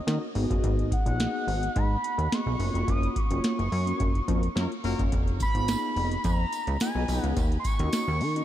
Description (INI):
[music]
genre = early-eighties boogie funk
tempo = 107 BPM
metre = 4/4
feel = straight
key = unclear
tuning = A4 = 436 Hz
[part]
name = expressive synth lead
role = melody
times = 0.0-8.4 s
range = Eb5 to Eb6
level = -32 LUFS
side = right 1 dB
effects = chorus, tape echo
[part]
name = mellow synth brass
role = accompaniment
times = 0.1-8.4 s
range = Bb3 to Eb5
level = -33 LUFS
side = left 1 dB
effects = chorus
[part]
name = plucky analog bass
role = bass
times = 0.1-8.4 s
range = F1 to Eb3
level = -28 LUFS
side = equal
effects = none
[part]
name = booming analog drum machine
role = drums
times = 0.1-8.4 s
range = hi-hat, kick drum, snare drum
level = -29 LUFS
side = equal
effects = none
[part]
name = warm horn section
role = second line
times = 4.6-5.0 s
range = Bb3 to Bb4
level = -42 LUFS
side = left 2 dB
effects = none
[part]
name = tambourine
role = percussion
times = 5.4-8.1 s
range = none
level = -43 LUFS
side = right 8 dB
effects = none
[sound]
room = light reverb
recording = none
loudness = -24 LUFS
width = side -12 dB against mid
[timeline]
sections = 0.0-8.4 A section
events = band accent 2.9-5.1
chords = 0.4 Abm7; 2.6 Gbmaj7; 5.1 Fm7b5; 7.4 Ebm7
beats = 0.08 | 0.64 1.20 1.76 2.32 | 2.88 3.44 4.00 4.56 | 5.12 5.68 6.24 6.80 | 7.37 7.93